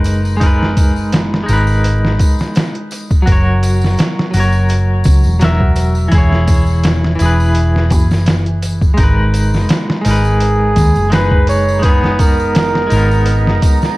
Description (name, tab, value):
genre	trip hop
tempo	84 BPM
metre	4/4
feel	swing 54% on 16ths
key	G# minor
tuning	A4 = 441 Hz
part	clean electric guitar	accompaniment	0.0-14.0 s	E3 to E5	-17 LUFS	equal	tremolo, tape echo
part	hollow-body short-scale fingered electric bass	bass	0.0-13.6 s	E1 to D#2	-14 LUFS	equal	none
part	tambourine	percussion	0.0-13.9 s	none	-33 LUFS	left 3 dB	none
part	trip hop sampler-style drum kit	drums	0.1-14.0 s	hi-hat, kick drum, snare drum	-14 LUFS	equal	small room ambience
part	deep dark ambient pad	sustained chords	10.5-14.0 s	A#5	-27 LUFS	right 9 dB	chorus, built-in reverb
part	trumpet with bucket mute	melody	10.1-13.6 s	G#4 to C#5	-17 LUFS	right 1 dB	tape echo
room	digital ambience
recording	dark, warm production, vinyl crackle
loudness	-10 LUFS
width	side -20 dB against mid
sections	0.0-14.0 A section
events	none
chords	0.0 G#madd9; 3.3 F#; 6.1 E; 9.0 G#madd9